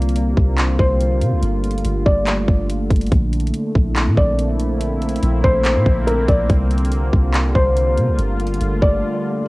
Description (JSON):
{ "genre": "hip hop, atmospheric cloud-rap", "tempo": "142 BPM", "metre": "4/4", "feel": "half-time", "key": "G dorian", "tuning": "A4 = 438 Hz", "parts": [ { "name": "sweeping resonant pad", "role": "sustained chords", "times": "0.0-9.5 s", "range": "D3 to F4", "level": "-23 LUFS", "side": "equal", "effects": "chorus, sidechain pumping, cassette tape" }, { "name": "soft 808-style bass", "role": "bass", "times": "0.0-9.0 s", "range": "G1 to C3", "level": "-19 LUFS", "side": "equal", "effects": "none" }, { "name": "trap drum kit", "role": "drums", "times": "0.0-8.9 s", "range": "handclaps, hi-hat, kick drum", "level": "-18 LUFS", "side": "equal", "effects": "cassette tape" }, { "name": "felt-muted upright piano", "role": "melody", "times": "0.8-9.4 s", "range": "Bb4 to D5", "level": "-21 LUFS", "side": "left 1 dB", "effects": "low-pass filter, cassette tape, tape echo" } ], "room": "light reverb, digital ambience", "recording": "home recording on cassette", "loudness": "-15 LUFS", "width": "side -21 dB against mid", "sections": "0.0-9.5 A section", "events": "break 9.0-9.5", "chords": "0.0 C9sus4; 1.4 Gm9; 3.1 Bbmaj9#11; 6.5 C9sus4; 8.2 Gm9", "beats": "0.16 0.58 1.00 | 1.43 1.85 2.27 2.69 | 3.12 3.54 3.96 4.38 | 4.81 5.23 5.65 6.08 | 6.50 6.92 7.34 7.76 | 8.19 8.61 9.03 9.46" }